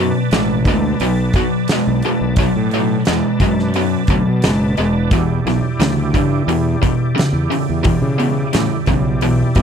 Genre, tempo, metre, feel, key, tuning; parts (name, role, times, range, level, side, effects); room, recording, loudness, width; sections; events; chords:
blues rock power trio and southern rock; 88 BPM; 4/4; straight; B minor; A4 = 441 Hz
overdriven tonewheel organ; sustained chords; 0.0-9.6 s; E4 to A5; -26 LUFS; right 3 dB; chorus vibrato, slow rotary speaker
overdriven electric guitar; riff; 0.0-9.6 s; E2 to G#3; -17 LUFS; equal
fuzz fingered electric bass; bass; 0.0-9.6 s; E1 to C#3; -20 LUFS; equal; overdrive
huge arena drum kit; drums; 0.3-9.6 s; hi-hat, kick drum, snare drum; -19 LUFS; equal
little or no reverb; dry, close 1970s-style studio recording, faint mains hum; -14 LUFS; side -7 dB against mid
0.0-9.6 A section
0.0 Bm7; 5.1 Em7